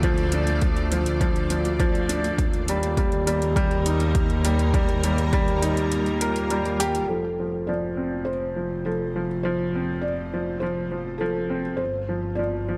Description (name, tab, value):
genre	piano and strings electronica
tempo	102 BPM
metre	4/4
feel	straight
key	unclear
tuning	A4 = 441 Hz
part	granular cloud pad	sustained chords	0.0-12.8 s	G3 to D5	-35 LUFS	equal	built-in reverb, sidechain pumping
part	clear upright piano	riff	0.0-12.8 s	F3 to Bb4	-28 LUFS	equal	low-pass filter, delay
part	rich studio double bass section	bass	0.0-12.8 s	F1 to Eb2	-29 LUFS	equal	sidechain pumping
part	electronic hi-hat	drums	0.0-7.1 s	none	-35 LUFS	equal	overdrive, small room ambience
part	electronic kick drum	drums	0.0-5.4 s	none	-26 LUFS	equal	overdrive, small room ambience
part	felt-muted upright piano	melody	7.1-12.8 s	A4 to D5	-32 LUFS	equal	none
room	moderate lush hall reverb, RT60 2.2 s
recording	none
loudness	-24 LUFS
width	mono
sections	0.0-7.1 A section; 7.1-12.8 B section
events	kick drops out 5.9-7.1; fade-in on ambient pad 7.1-12.8; filter sweep on upright piano 7.1-12.8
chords	0.0 Dm; 2.4 Eb; 7.1 F; 11.8 Gm7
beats	| 0.04 0.62 1.21 1.80 | 2.39 2.98 3.56 4.15 | 4.74 5.33 5.92 6.51 | 7.09 7.68 8.27 8.86 | 9.45 10.04 10.62 11.21 | 11.80 12.39